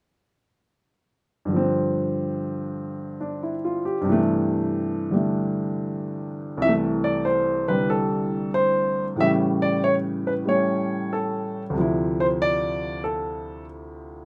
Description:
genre	jazz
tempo	94 BPM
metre	4/4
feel	swing 67% on 8ths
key	C major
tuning	A4 = 440 Hz
part	warm baby grand piano	solo	1.5-14.2 s	C2 to E5	-24 LUFS	equal	none
room	wet small room reverb, RT60 0.5 s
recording	none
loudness	-24 LUFS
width	mono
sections	1.5-6.6 A section; 6.6-14.2 B section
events	none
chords	1.5 G7sus4; 4.1 C6/G; 6.6 C6; 9.2 A7; 11.8 Dm9

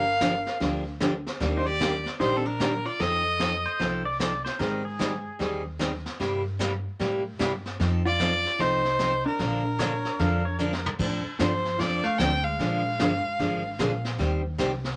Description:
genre	country, western swing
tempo	150 BPM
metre	4/4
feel	swing 64% on 8ths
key	unclear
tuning	A4 = 438 Hz
part	clear fiddle	melody	0.0-3.8, 8.1-14.0 s	A4 to G5	-29 LUFS	equal	none
part	vintage hollow-body jazz guitar	second line	0.0-3.8, 8.1-14.0 s	F3 to Bb4	-36 LUFS	equal	none
part	picked steel-string acoustic guitar	accompaniment	0.0-14.7 s	C3 to C5	-31 LUFS	equal	none
part	upright bass	bass	0.0-15.0 s	G1 to A2	-34 LUFS	equal	none
part	vintage brush drum kit	drums	0.2-15.0 s	brushed snare drum, crash cymbal, hi-hat, kick drum, snare drum, toms	-35 LUFS	equal	none
part	pedal steel guitar	second line	3.7-5.6, 9.8-10.9 s	Ab4 to F5	-34 LUFS	equal	none
room	moderate club reverb, RT60 0.5 s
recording	none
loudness	-27 LUFS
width	mono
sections	0.0-11.0 A section; 11.0-15.0 B section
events	drum fill 10.6-11.0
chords	0.0 Gm7; 1.4 Ebmaj7; 3.0 F7; 4.6 Abmaj7; 6.2 C7/G; 7.8 F7; 9.4 Bbmaj7; 11.0 F6; 12.6 Bb7; 14.2 Eb6

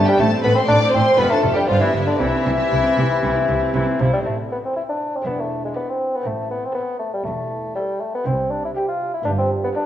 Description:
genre	classical, baroque-style concerto movement with solo episodes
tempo	120 BPM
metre	4/4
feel	straight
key	C major, A minor from 4.3 s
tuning	A4 = 440 Hz
part	mellow bassoon	melody	0.0-9.9 s	D3 to G4	-20 LUFS	left 1 dB	none
part	rich chamber violin section	melody	0.0-9.9 s	D5 to D6	-27 LUFS	left 2 dB	none
part	rich chamber violin section	second line	0.0-9.9 s	D4 to D5	-25 LUFS	left 2 dB	none
part	lute	accompaniment	0.0-9.9 s	E2 to G4	-28 LUFS	right 2 dB	none
part	rich chamber viola section	accompaniment	0.0-9.9 s	A3 to A4	-28 LUFS	right 2 dB	none
part	rich studio cello section	bass	0.0-9.6 s	E2 to C3	-25 LUFS	right 2 dB	none
part	rich symphonic double bass section	bass	0.0-9.6 s	E1 to C2	-26 LUFS	right 2 dB	none
room	wet scoring stage reverb, RT60 1.8 s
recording	worn, warbling old tape, cassette tape, warbly pitch drift, small room ambience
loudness	-17 LUFS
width	side -11 dB against mid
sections	0.0-4.3 A section; 4.3-9.9 B section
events	none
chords	0.2 Am; 1.2 Dm/F; 1.7 G; 2.2 C; 4.3 Am; 5.3 E7; 6.3 Am; 8.3 C; 9.3 G7

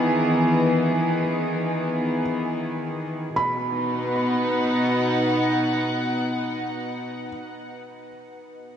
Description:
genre	ambient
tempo	free time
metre	none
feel	none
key	B major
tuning	A4 = 440 Hz
part	felt-muted upright piano	melody	0.0-7.3 s	G#5 to B5	-30 LUFS	right 2 dB	ping-pong delay
part	warm studio string section	sustained chords	0.0-7.7 s	B2 to F#5	-22 LUFS	equal	none
part	muted felt-like synth keys	arpeggios	0.0-8.8 s	B3 to B4	-40 LUFS	equal	none
room	wet huge ambient reverb, RT60 7.8 s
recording	worn, warbling old tape, cassette tape, warbly pitch drift, nothing above 11.0 kHz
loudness	-21 LUFS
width	side -9 dB against mid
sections	0.0-3.3 A section; 3.3-7.5 B section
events	none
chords	0.0 Emaj7; 3.3 B

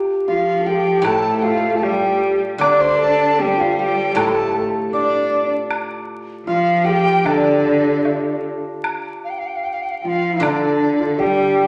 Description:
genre	chinese traditional, Chinese chamber ensemble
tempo	77 BPM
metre	2/4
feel	rubato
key	D yu mode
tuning	A4 = 439 Hz
part	hammered dulcimer	second line	0.0-11.7 s	D4 to D5	-24 LUFS	equal	none
part	large dizi	melody	0.3-11.7 s	D5 to D6	-24 LUFS	equal	none
part	clear cello	second line	0.3-11.7 s	D3 to D4	-24 LUFS	equal	none
part	low xiao	second line	0.3-11.7 s	D4 to D5	-24 LUFS	equal	none
part	guzheng	accompaniment	1.0-6.5, 10.4-11.7 s	A2 to D3	-30 LUFS	equal	none
part	woodblock	percussion	1.0-10.6 s	none	-29 LUFS	equal	none
room	wet recital hall reverb, RT60 1.4 s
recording	vinyl crackle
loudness	-18 LUFS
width	mono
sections	0.0-8.8 A section; 8.8-11.7 B section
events	none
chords	none

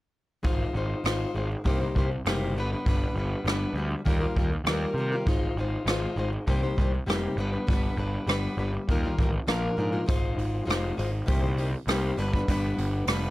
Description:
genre	quiet-loud alternative rock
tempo	100 BPM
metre	4/4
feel	straight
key	unclear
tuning	A4 = 441 Hz
part	fingerpicked plugged-in steel-string acoustic guitar	arpeggios	0.4-13.3 s	Bb2 to C5	-30 LUFS	left 2 dB	none
part	fuzz picked electric bass	bass	0.4-13.3 s	F1 to C3	-29 LUFS	equal	overdrive
part	jazz brush drum kit	drums	0.4-13.2 s	hi-hat, kick drum, rim click	-28 LUFS	equal	none
room	little or no reverb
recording	none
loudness	-25 LUFS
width	side -16 dB against mid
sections	0.4-10.1 A section; 10.1-13.3 B section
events	none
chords	0.4 Ab6; 1.7 Cm7; 2.6 G; 4.1 Ebadd9; 5.3 Ab6; 6.5 Cm7; 7.4 G; 8.9 Ebadd9; 9.5 Bb; 10.1 Ab6; 11.3 Cm7; 12.2 G

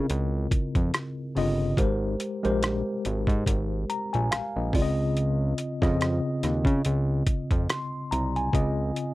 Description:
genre	R&B, neo-soul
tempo	71 BPM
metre	4/4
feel	swing 57% on 16ths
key	Db lydian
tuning	A4 = 440 Hz
part	mellow tine electric piano	accompaniment	0.0-9.1 s	Db3 to C6	-28 LUFS	left 1 dB	medium stereo tremolo
part	fat analog bass	bass	0.0-8.9 s	G1 to Db3	-27 LUFS	equal	none
part	boom bap sampler-style drum kit	drums	0.1-9.1 s	hi-hat, kick drum, rim click	-26 LUFS	equal	none
room	little or no reverb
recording	dry, close 1970s-style studio recording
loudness	-24 LUFS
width	side -18 dB against mid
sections	0.0-8.5 A section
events	none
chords	0.0 Dbmaj9; 1.8 Abmaj9; 4.7 Dbmaj9

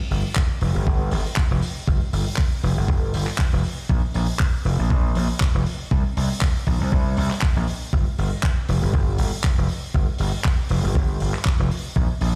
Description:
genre	nu-disco, nu disco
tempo	119 BPM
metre	4/4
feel	swing 55% on 16ths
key	unclear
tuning	A4 = 440 Hz
part	gritty slap bass	bass	0.1-12.3 s	F1 to C2	-24 LUFS	equal	overdrive
part	damped 70s drum kit	drums	0.1-12.3 s	handclaps, hi-hat	-33 LUFS	equal	none
part	electronic kick drum	drums	0.4-12.1 s	none	-23 LUFS	equal	none
room	little or no reverb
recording	played on a big sound system in a bare room, stone room reverb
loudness	-22 LUFS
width	mono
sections	0.0-12.4 A section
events	none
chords	none

